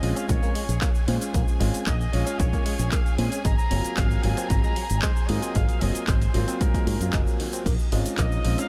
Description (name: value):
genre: nu-disco, nu disco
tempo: 114 BPM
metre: 4/4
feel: straight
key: Bb minor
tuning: A4 = 440 Hz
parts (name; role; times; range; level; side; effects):
- warm trumpet section; melody; 0.0-8.7 s; Bb4 to Bb5; -37 LUFS; equal; analog delay
- clear grand piano; accompaniment; 0.0-8.7 s; Gb3 to Db5; -34 LUFS; equal; sidechain pumping, analog delay
- warm studio string section; sustained chords; 0.0-8.7 s; Eb4 to Ab5; -41 LUFS; equal; sidechain pumping
- fingered electric bass with an envelope filter; bass; 0.0-8.5 s; Gb1 to Bb2; -28 LUFS; equal; tube saturation
- house drum kit; drums; 0.0-8.7 s; cabasa, crash cymbal, handclaps, hi-hat; -36 LUFS; equal; small room ambience
- direct-recorded clean electric guitar; riff; 0.2-8.7 s; Ab2 to Db4; -38 LUFS; equal; lush chorus, analog delay
- cabasa; percussion; 0.2-8.7 s; none; -47 LUFS; equal; none
- electronic kick drum; drums; 0.3-8.3 s; none; -27 LUFS; equal; small room ambience
room: light reverb, small room ambience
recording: none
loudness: -24 LUFS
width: mono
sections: 0.0-8.7 A section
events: none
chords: 0.0 Bbm9; 3.4 Ab13; 7.7 Bbm9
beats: 0.29 0.82 | 1.34 1.87 2.40 2.92 | 3.45 3.98 4.50 5.03 | 5.55 6.08 6.61 7.13 | 7.66 8.19